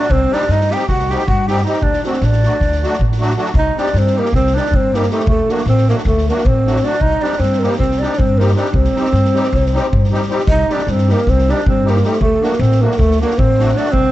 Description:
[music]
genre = balkan folk, Balkan wedding band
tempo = 312 BPM (eighths)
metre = 9/8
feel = straight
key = C dorian sharp4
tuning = A4 = 442 Hz
[part]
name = breathy mellow ney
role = melody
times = 0.0-14.1 s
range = A4 to G5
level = -19 LUFS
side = left 1 dB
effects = none
[part]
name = warm clarinet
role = second line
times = 0.0-14.1 s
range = A3 to G4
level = -20 LUFS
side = right 4 dB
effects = none
[part]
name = musette accordion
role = accompaniment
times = 0.0-13.9 s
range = F#3 to G4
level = -22 LUFS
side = left 1 dB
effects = none
[part]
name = street-band drum kit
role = percussion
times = 0.0-14.0 s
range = kick drum, snare drum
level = -20 LUFS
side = equal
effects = none
[part]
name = upright bass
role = bass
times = 0.1-14.1 s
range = A1 to G2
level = -16 LUFS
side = equal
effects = none
[sound]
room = light reverb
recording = dark, warm production, nothing above 8.0 kHz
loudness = -12 LUFS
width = side -15 dB against mid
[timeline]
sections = 0.0-10.5 A section; 10.5-14.1 A section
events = none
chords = 0.1 Cm; 1.8 D; 3.5 Cm; 5.3 D; 7.0 Cm; 12.2 D

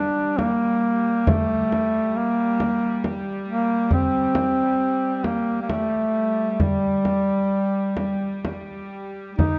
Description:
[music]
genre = caucasian folk, Caucasian lament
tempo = 67 BPM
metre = 3/4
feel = rubato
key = G minor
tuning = A4 = 440 Hz
[part]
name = breathy duduk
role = melody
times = 0.0-9.6 s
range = G3 to Eb4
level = -23 LUFS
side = equal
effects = none
[part]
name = rich studio string section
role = drone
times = 0.0-9.6 s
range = G3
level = -33 LUFS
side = equal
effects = none
[part]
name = frame drum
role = percussion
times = 0.4-9.6 s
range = none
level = -27 LUFS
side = equal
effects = none
[sound]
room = moderate scoring stage reverb, RT60 1.7 s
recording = dark, warm production, nothing above 7.8 kHz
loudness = -22 LUFS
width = mono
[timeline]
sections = 0.0-9.4 A section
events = none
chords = none

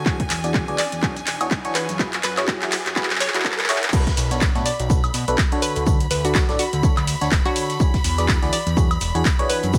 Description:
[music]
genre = piano house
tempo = 124 BPM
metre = 4/4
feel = swing 58% on 16ths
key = unclear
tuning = A4 = 440 Hz
[part]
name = hollow square pluck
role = melody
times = 0.0-9.7 s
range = F#4 to D5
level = -31 LUFS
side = equal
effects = chorus, dub echo
[part]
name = rich chamber violin section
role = sustained chords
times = 0.0-9.8 s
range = G#5 to B5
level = -34 LUFS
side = equal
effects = sidechain pumping
[part]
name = barking FM electric piano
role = riff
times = 0.0-9.8 s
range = B2 to D5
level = -29 LUFS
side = equal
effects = phaser, sidechain pumping
[part]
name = riser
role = sound effects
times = 0.0-3.9 s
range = none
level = -37 LUFS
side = equal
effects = none
[part]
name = electronic kick drum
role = drums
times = 0.1-9.8 s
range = none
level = -23 LUFS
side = equal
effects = none
[part]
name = punchy analog drum machine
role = drums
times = 0.1-9.8 s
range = crash cymbal, handclaps, hi-hat, shaker, woodblock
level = -26 LUFS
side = equal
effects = none
[part]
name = fat analog bass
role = bass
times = 0.3-9.8 s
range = D1 to B2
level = -28 LUFS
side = equal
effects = sidechain pumping
[part]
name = gated 80s drum kit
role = drums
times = 3.9-9.8 s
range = hi-hat, shaker, snare drum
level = -39 LUFS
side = equal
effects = none
[sound]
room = light reverb, studio reverb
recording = high-pass filter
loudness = -21 LUFS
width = mono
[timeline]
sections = 0.0-3.9 A section; 3.9-9.8 B section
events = build-up 0.0-3.9; drum fill 0.0-3.9; filter sweep 0.0-3.9; drop 3.9-9.8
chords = 0.1 E13; 2.0 F#9sus4; 3.9 Bm7; 5.6 Dmaj7; 7.8 E13

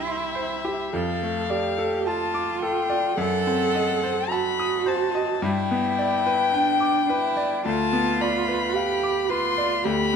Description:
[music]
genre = classical, slow romantic movement for piano trio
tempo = 54 BPM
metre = 4/4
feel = rubato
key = unclear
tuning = A4 = 440 Hz
[part]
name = dark violin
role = melody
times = 0.0-10.2 s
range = E5 to C6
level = -26 LUFS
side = left 8 dB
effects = none
[part]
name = warm cello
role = second line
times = 0.0-10.2 s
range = D4 to A4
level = -26 LUFS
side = right 8 dB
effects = none
[part]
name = bright grand piano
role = accompaniment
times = 0.0-10.2 s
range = C2 to D#6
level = -26 LUFS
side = left 1 dB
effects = none
[sound]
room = moderate recital hall reverb, RT60 1.5 s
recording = close, detailed microphones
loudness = -21 LUFS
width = side -6 dB against mid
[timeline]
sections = 0.0-10.2 A section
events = none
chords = 0.0 C; 0.9 Dm/F; 3.2 F#dim7; 5.4 G; 7.7 Bdim/D

